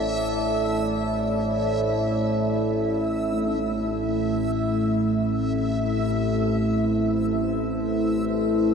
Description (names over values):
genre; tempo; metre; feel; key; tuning
dark ambient drone; free time; none; none; A minor; A4 = 436 Hz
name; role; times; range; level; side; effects
deep dark ambient pad; sustained chords; 0.0-8.7 s; A3 to D5; -25 LUFS; equal; chorus, built-in reverb
overtone-sweeping drone; drone; 0.0-8.7 s; A1 to A2; -25 LUFS; equal; chorus, built-in reverb, phaser
backwards swelling texture; texture; 0.0-8.7 s; E5; -31 LUFS; right 1 dB; built-in reverb
room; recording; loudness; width
wet cathedral reverb, RT60 5.7 s; dark, warm production; -22 LUFS; side -6 dB against mid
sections
0.0-3.3 A section; 3.3-8.7 B section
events
none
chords
0.0 A5; 3.3 Am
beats
free time